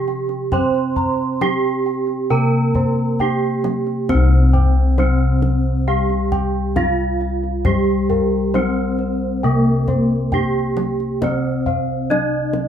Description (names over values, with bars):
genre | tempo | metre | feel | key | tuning
Javanese gamelan | 67 BPM | 4/4 | straight | C slendro | A4 = 440 Hz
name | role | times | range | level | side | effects
gamelan-type bronze metallophone | melody | 0.0-12.7 s | Bb3-25c to C5 | -22 LUFS | right 2 dB | none
gamelan-type bronze metallophone | accompaniment | 0.0-12.7 s | C3 to C4 | -23 LUFS | equal | none
gamelan-type bossed gongs | arpeggios | 0.0-12.6 s | Bb4-25c to Bb5-25c | -26 LUFS | left 1 dB | none
gamelan-type bronze metallophone | arpeggios | 0.0-12.7 s | Bb4-25c to C6 | -29 LUFS | right 6 dB | none
gamelan-type bossed gongs | bass | 0.0-12.7 s | C2 to C5 | -20 LUFS | left 1 dB | none
kendang | percussion | 0.1-12.7 s | none | -24 LUFS | left 1 dB | none
room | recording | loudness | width
wet small room reverb, RT60 0.5 s | band playing live in one room | -16 LUFS | side -9 dB against mid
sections
0.0-12.7 A section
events
none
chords
none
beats
| 0.52 1.41 2.30 3.19 | 4.09 4.98 5.87 6.76 | 7.66 8.55 9.44 10.33 | 11.23 12.11